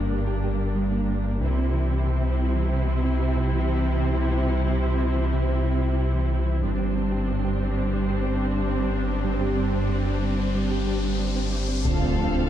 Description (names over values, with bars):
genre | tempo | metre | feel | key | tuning
cinematic, hybrid orchestral and electronic film score | 92 BPM | 4/4 | straight | unclear | A4 = 438 Hz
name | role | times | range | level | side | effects
rich symphonic viola section | accompaniment | 0.0-12.5 s | Bb3 to E4 | -31 LUFS | right 2 dB | none
glassy FM pad | sustained chords | 0.0-12.5 s | G3 to C5 | -31 LUFS | left 2 dB | ensemble chorus, built-in reverb
thumb-piano-like synth pluck | arpeggios | 0.0-12.4 s | C3 to G4 | -32 LUFS | right 4 dB | chorus, ping-pong delay
rich symphonic cello section | bass | 0.0-12.5 s | D2 to C3 | -29 LUFS | right 2 dB | none
sub bass with octave | bass | 0.0-12.5 s | D1 to C2 | -25 LUFS | left 1 dB | none
riser and impact | sound effects | 9.3-12.5 s | none | -36 LUFS | left 2 dB | none
warm symphonic violin section | melody | 11.8-12.5 s | F5 | -34 LUFS | left 5 dB | none
warm symphonic violin section | second line | 11.8-12.5 s | A4 | -34 LUFS | left 3 dB | none
mellow French horn section | sustained chords | 11.8-12.5 s | C4 to F4 | -31 LUFS | left 2 dB | none
taiko ensemble | drums | 11.8-12.5 s | none | -28 LUFS | left 1 dB | none
warm symphonic double bass section | bass | 11.9-12.5 s | D2 | -27 LUFS | right 3 dB | none
room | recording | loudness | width
light reverb | dark, warm production | -22 LUFS | side -11 dB against mid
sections
0.0-11.8 A section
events
riser 9.3-11.8; impact 11.8-12.5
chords
0.0 Gm; 1.4 C; 6.6 Gsus4; 11.8 Dm7